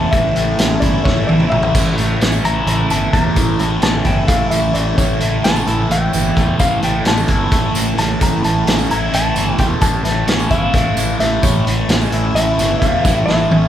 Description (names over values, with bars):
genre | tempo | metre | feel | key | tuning
psychedelic rock | 260 BPM (eighths) | 7/8 | straight | A major | A4 = 440 Hz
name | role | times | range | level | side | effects
clean lap steel guitar | melody | 0.0-13.7 s | C#5 to Bb5 | -20 LUFS | left 1 dB | none
string machine, violas | sustained chords | 0.0-13.7 s | C#3 to A3 | -25 LUFS | right 2 dB | none
fuzz guitar | riff | 0.0-13.7 s | A2 to E4 | -18 LUFS | equal | distortion, phaser
fuzz fingered electric bass | bass | 0.0-13.7 s | E1 to A1 | -21 LUFS | equal | overdrive
vintage drum kit | drums | 0.1-13.6 s | crash cymbal, hi-hat, kick drum, snare drum, toms | -18 LUFS | equal | none
tambourine | percussion | 1.7-13.5 s | none | -32 LUFS | right 6 dB | none
room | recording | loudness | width
moderate large studio reverb, RT60 1.2 s | band playing live in one room | -13 LUFS | side -10 dB against mid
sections
0.0-13.7 A section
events
electric slide guitar solo 0.0-13.7; drum fill 1.1-1.8, 13.1-13.7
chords
0.0 A